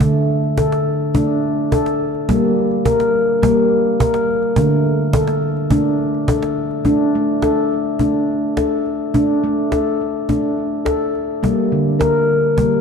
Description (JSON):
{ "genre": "world meditative, meditative tuned percussion", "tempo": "105 BPM", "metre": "4/4", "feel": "straight", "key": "unclear", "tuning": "A4 = 440 Hz", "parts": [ { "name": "handpan", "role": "arpeggios", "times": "0.0-12.8 s", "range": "D3 to Bb4", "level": "-15 LUFS", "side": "left 1 dB", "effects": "ping-pong delay" }, { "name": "cajon", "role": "percussion", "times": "0.0-12.8 s", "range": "none", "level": "-21 LUFS", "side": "right 1 dB", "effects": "none" } ], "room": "wet church reverb, RT60 2.7 s", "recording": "dark, warm production", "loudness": "-15 LUFS", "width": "side -6 dB against mid", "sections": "0.0-6.9 A section; 6.9-12.8 B section", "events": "none", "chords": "0.0 D5; 2.3 Gm; 4.6 D5; 11.4 Gm" }